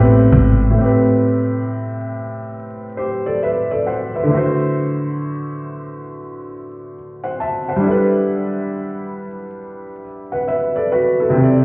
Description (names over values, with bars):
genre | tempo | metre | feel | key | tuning
lo-fi hip hop | 68 BPM | 4/4 | swing 65% on 16ths | A dorian | A4 = 439 Hz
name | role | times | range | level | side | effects
felt-muted upright piano | accompaniment | 0.0-11.6 s | A2 to A5 | -16 LUFS | equal | cassette tape, low-pass filter
upright bass | bass | 0.0-0.7 s | G#1 to A1 | -13 LUFS | equal | none
cajon | drums | 0.3-0.6 s | none | -16 LUFS | equal | none
room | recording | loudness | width
light reverb, small room ambience | heard muffled through a wall, stone room reverb, vinyl crackle, EQ | -15 LUFS | side -26 dB against mid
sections
0.8-11.6 A section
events
none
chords
0.0 Am7; 4.3 D7; 7.8 G69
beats
| 0.76 1.65 2.53 3.41 | 4.29 5.17 6.06 6.94 | 7.82 8.70 9.59 10.47 | 11.35